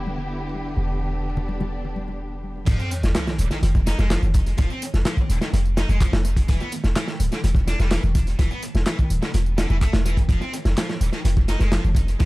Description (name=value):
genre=breakbeat, breaks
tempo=126 BPM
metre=4/4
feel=straight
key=unclear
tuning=A4 = 440 Hz
part: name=clear symphonic string section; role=sustained chords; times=0.0-2.7 s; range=D3 to G4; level=-31 LUFS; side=equal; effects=sidechain pumping
part: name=warm 808-style bass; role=bass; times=0.0-12.3 s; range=D1 to F1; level=-22 LUFS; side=equal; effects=tube saturation
part: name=congas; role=percussion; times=0.1-2.1 s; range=none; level=-33 LUFS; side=left 2 dB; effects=tape echo
part: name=thick fuzz guitar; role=riff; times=2.7-12.3 s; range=D3 to Eb4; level=-29 LUFS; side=right 1 dB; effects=distortion, tube saturation, tape echo
part: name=crunchy breakbeat drum kit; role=drums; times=2.7-12.3 s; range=crash cymbal, hi-hat, kick drum, snare drum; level=-23 LUFS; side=equal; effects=tape echo
part: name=electronic tambourine and handclaps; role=drums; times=2.7-12.3 s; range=none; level=-36 LUFS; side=equal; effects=overdrive, low-pass filter on perc, low-pass filter on snare, tape echo
part: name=sub drop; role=sound effects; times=2.7-4.6 s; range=none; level=-29 LUFS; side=equal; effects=none
room=studio reverb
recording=echo-heavy mix, vinyl crackle, low-pass filter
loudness=-19 LUFS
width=side -20 dB against mid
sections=0.0-2.7 A section; 2.7-12.3 B section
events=drop 2.7-12.3; impact 2.7-4.6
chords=0.0 Em7; 2.7 F7(no3); 6.5 E7(no3); 10.3 F7(no3)